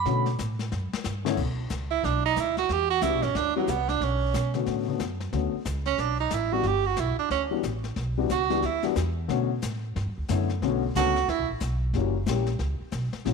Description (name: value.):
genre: jazz, small-group swing and bop.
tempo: 182 BPM.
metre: 4/4.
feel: swing 62% on 8ths.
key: B minor.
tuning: A4 = 440 Hz.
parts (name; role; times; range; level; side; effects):
upright bass; bass; 0.0-13.3 s; F#1 to B2; -29 LUFS; right 1 dB; none.
dark baby grand piano; accompaniment; 0.1-13.3 s; D3 to A4; -29 LUFS; left 12 dB; none.
jazz brush drum kit; drums; 0.1-13.3 s; brushed snare drum, crash cymbal, hi-hat, kick drum, snare drum; -36 LUFS; left 7 dB; none.
clear tenor saxophone; second line; 1.9-8.8, 11.0-11.5 s; F#3 to G4; -26 LUFS; right 12 dB; none.
room: moderate echo chamber reverb, RT60 1.6 s, studio ambience.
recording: 1960s-style stereo with parts hard left and right.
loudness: -24 LUFS.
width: side -5 dB against mid.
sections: 0.0-1.4 A section; 1.4-13.3 A section.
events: drum fill 0.7-1.4; tenor saxophone solo 1.4-13.3.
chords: 0.0 Bm7; 0.7 F#5; 1.4 Bm; 2.7 Em7; 4.0 Bm7; 6.6 Em7; 9.3 Bm7; 11.9 F#7b9.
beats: | 0.07 0.40 0.72 1.05 | 1.38 1.71 2.04 2.37 | 2.70 3.03 3.35 3.68 | 4.01 4.34 4.67 5.00 | 5.33 5.66 5.99 6.32 | 6.65 6.98 7.31 7.64 | 7.97 8.30 8.63 8.96 | 9.29 9.62 9.95 10.28 | 10.61 10.95 11.28 11.61 | 11.94 12.27 12.60 12.93 | 13.26.